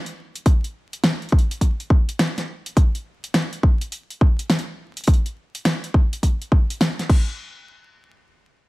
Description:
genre	glitch hop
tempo	104 BPM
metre	4/4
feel	swing 64% on 16ths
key	none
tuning	none
part	pop drum kit	drums	0.1-7.2 s	crash cymbal, hi-hat, snare drum	-22 LUFS	equal	none
part	electronic kick drum	drums	0.5-7.2 s	none	-16 LUFS	equal	none
room	little or no reverb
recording	vinyl crackle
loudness	-18 LUFS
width	side -21 dB against mid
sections	0.0-7.4 A section; 7.4-8.7 B section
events	none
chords	none

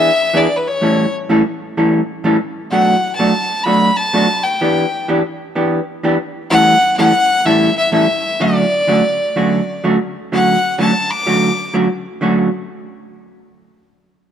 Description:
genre	country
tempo	126 BPM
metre	4/4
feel	swing 68% on 8ths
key	D major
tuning	A4 = 438 Hz
part	clear fiddle	melody	0.0-11.7 s	B4 to D6	-15 LUFS	left 2 dB	none
part	vintage hollow-body jazz guitar	accompaniment	0.0-12.5 s	A2 to A4	-15 LUFS	right 1 dB	none
room	moderate echo chamber reverb, RT60 2.6 s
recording	none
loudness	-13 LUFS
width	side -9 dB against mid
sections	0.0-10.3 A section; 10.3-12.2 B section; 12.2-14.1 C section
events	none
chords	0.0 E7; 0.8 A7; 2.7 Bm7; 4.6 Em7; 6.5 A7; 8.4 Dmaj7

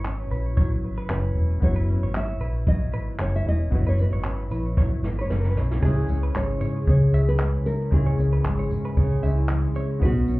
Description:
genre	acoustic pop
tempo	114 BPM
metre	4/4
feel	swing 55% on 16ths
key	unclear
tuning	A4 = 436 Hz
part	nylon-string guitar	melody	0.0-10.4 s	F#4 to E5	-32 LUFS	right 1 dB	tape echo
part	picked steel-string acoustic guitar	accompaniment	0.0-10.4 s	B2 to B4	-27 LUFS	equal	double-tracked left and right
part	direct-recorded clean electric guitar	arpeggios	0.0-10.3 s	G#4 to E5	-40 LUFS	right 5 dB	spring reverb, tape echo
part	vintage muted fingered electric bass	bass	0.0-10.4 s	E1 to C#3	-23 LUFS	equal	none
part	jazz brush drum kit	drums	0.1-10.4 s	crash cymbal, handclaps, kick drum, snare drum, tambourine	-25 LUFS	equal	none
part	clear upright piano	accompaniment	1.6-10.4 s	G#3 to C#5	-36 LUFS	left 3 dB	none
room	light reverb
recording	heard muffled through a wall, club reverb, EQ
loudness	-21 LUFS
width	side -20 dB against mid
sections	0.0-5.8 A section; 5.8-10.4 B section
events	drum fill 4.8-5.8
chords	0.0 F#7sus4; 5.8 C#m

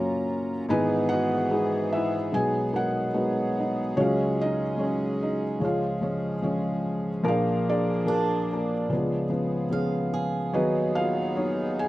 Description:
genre	acoustic folk-pop ballad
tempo	73 BPM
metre	4/4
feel	straight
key	unclear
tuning	A4 = 440 Hz
part	felt-muted upright piano	melody	0.0-11.9 s	F#1 to A#5	-24 LUFS	equal	none
part	pedal harmonium	sustained chords	0.0-11.9 s	D#2 to A#5	-32 LUFS	equal	none
part	picked swing-style acoustic guitar	arpeggios	8.1-10.9 s	D4 to E#5	-32 LUFS	right 3 dB	none
room	light reverb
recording	recorded outdoors, with no room sound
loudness	-24 LUFS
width	side -16 dB against mid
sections	0.0-11.9 A section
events	none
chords	0.0 F#maj7; 0.7 Emaj7/G#; 2.3 B6; 4.0 C#sus4; 5.6 C#; 7.3 A#7; 8.9 C#7; 10.6 B6/D#

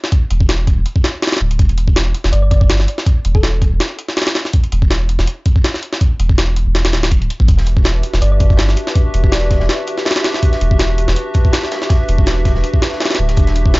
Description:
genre	drum and bass, jungle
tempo	163 BPM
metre	4/4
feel	swing 54% on 16ths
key	E minor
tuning	A4 = 440 Hz
part	jungle sampler-style drum kit	drums	0.0-13.8 s	hi-hat, kick drum, snare drum	-14 LUFS	equal	none
part	soft dub sub bass	bass	0.3-13.8 s	D1 to A1	-15 LUFS	equal	none
part	thumb-piano-like synth pluck	melody	2.3-3.6, 8.2-9.7 s	A4 to D5	-26 LUFS	left 1 dB	chorus, cassette tape, dub echo
part	warbly tape-like pad	sustained chords	7.7-13.8 s	D4 to E5	-22 LUFS	equal	chorus, built-in reverb
part	crunchy breakbeat drum kit	drums	7.5-13.8 s	hi-hat, snare drum	-31 LUFS	left 1 dB	none
room	small room ambience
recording	dry, gritty hardware recording, nothing above 7.6 kHz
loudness	-12 LUFS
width	side -23 dB against mid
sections	0.0-13.8 A section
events	none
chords	0.0 E7(no3); 1.6 N.C.; 7.5 Em7

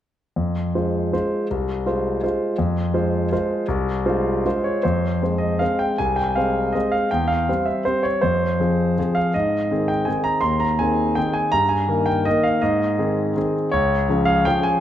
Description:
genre	classical, piano waltz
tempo	146-175 BPM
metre	3/4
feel	rubato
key	F minor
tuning	A4 = 440 Hz
part	clear concert grand piano	solo	0.4-14.8 s	C2 to C6	-18 LUFS	equal	none
room	moderate recital hall reverb, RT60 1.6 s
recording	dark, warm production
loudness	-18 LUFS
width	side -11 dB against mid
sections	0.4-4.8 A section; 4.8-14.8 B section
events	none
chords	0.4 Fm; 7.1 C/E; 8.2 Fm; 9.3 Ab; 11.5 Eb/G; 12.6 Ab; 13.7 Db

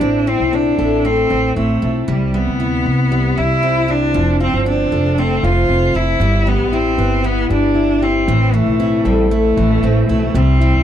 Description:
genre	acoustic pop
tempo	116 BPM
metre	4/4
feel	straight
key	unclear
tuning	A4 = 441 Hz
part	clear cello	melody	0.0-10.8 s	G3 to F4	-18 LUFS	right 1 dB	tape echo
part	fingerpicked plugged-in steel-string acoustic guitar	accompaniment	0.0-10.8 s	A2 to B4	-19 LUFS	left 5 dB	none
part	picked steel-string acoustic guitar	arpeggios	0.0-10.8 s	E3 to A4	-24 LUFS	right 7 dB	tape echo
part	upright bass	bass	0.0-10.8 s	F1 to D2	-18 LUFS	right 1 dB	none
room	light reverb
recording	dry, close 1970s-style studio recording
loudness	-13 LUFS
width	side -10 dB against mid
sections	0.0-10.8 A section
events	none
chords	0.0 Am; 2.1 C; 4.1 F; 6.2 Em/G; 8.3 Am

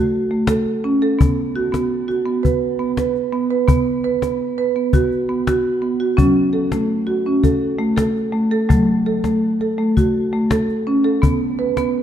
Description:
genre	world meditative, meditative tuned percussion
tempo	168 BPM (eighths)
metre	7/8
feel	straight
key	F# minor pentatonic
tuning	A4 = 443 Hz
part	marimba with medium mallets	arpeggios	0.0-12.0 s	F#3 to B4	-17 LUFS	right 2 dB	shimmer reverb
part	cajon	percussion	0.5-11.9 s	none	-19 LUFS	left 2 dB	none
room	wet recital hall reverb, RT60 1.5 s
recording	dark, warm production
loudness	-16 LUFS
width	side -10 dB against mid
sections	0.0-12.0 A section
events	none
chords	0.0 F#m; 1.2 B5; 6.2 F#m; 11.2 B5

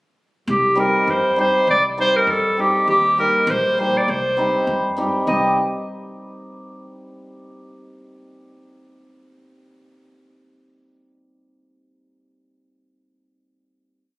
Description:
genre	balkan folk, Balkan wedding band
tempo	100 BPM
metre	2/4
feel	straight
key	C minor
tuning	A4 = 440 Hz
part	bright clarinet	melody	0.5-5.6 s	G4 to Eb5	-17 LUFS	equal	none
part	upright bass	bass	0.5-5.6 s	Bb1 to G2	-30 LUFS	equal	none
part	hammered dulcimer	accompaniment	0.8-5.6 s	G3 to G4	-22 LUFS	equal	none
room	moderate recital hall reverb, RT60 1.5 s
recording	recorded on a phone in the room, club reverb, compression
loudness	-16 LUFS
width	side -22 dB against mid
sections	0.5-5.3 A section; 5.3-6.5 final chord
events	none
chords	0.5 Cm; 2.9 Eb; 4.1 Cm

